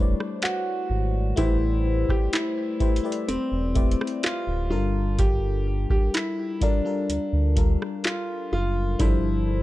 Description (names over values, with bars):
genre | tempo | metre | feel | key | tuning
contemporary R&B | 63 BPM | 4/4 | straight | unclear | A4 = 439 Hz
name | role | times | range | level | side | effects
clear grand piano | melody | 0.0-9.6 s | C4 to G4 | -28 LUFS | left 1 dB | digital delay
FM electric piano | accompaniment | 0.0-9.6 s | F3 to E5 | -30 LUFS | left 4 dB | chorus
sub bass with octave | bass | 0.0-9.6 s | D1 to D2 | -25 LUFS | equal | none
booming analog drum machine | drums | 0.2-9.2 s | handclaps, hi-hat, kick drum, rim click | -23 LUFS | equal | none
room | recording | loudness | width
digital ambience | dark, warm production | -22 LUFS | side -16 dB against mid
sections
0.0-9.6 A section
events
none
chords
0.0 Am7; 4.7 Gm7